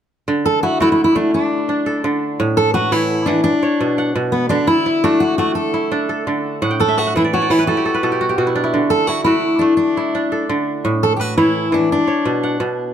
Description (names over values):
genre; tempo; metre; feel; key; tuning
west african traditional; 114 BPM (dotted quarters); 12/8; straight; D major; A4 = 439 Hz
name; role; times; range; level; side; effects
kora; arpeggios; 0.3-12.9 s; A2 to G5; -19 LUFS; right 2 dB; none
fingerpicked steel-string acoustic guitar; melody; 0.5-12.6 s; B3 to A4; -16 LUFS; left 1 dB; plate reverb, tape echo
room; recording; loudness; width
light reverb; none; -14 LUFS; side -9 dB against mid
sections
0.3-12.9 A section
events
kora fill 6.6-8.7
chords
0.3 D; 2.4 A; 3.5 Bm; 4.5 D; 6.6 A5; 7.7 N.C.; 8.7 D; 10.8 A; 11.9 Bm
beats
| 0.28 0.81 1.33 1.86 | 2.39 2.92 3.45 3.98 | 4.51 5.04 5.57 6.10 | 6.62 7.15 7.68 8.21 | 8.74 9.27 9.79 10.32 | 10.85 11.38 11.90 12.43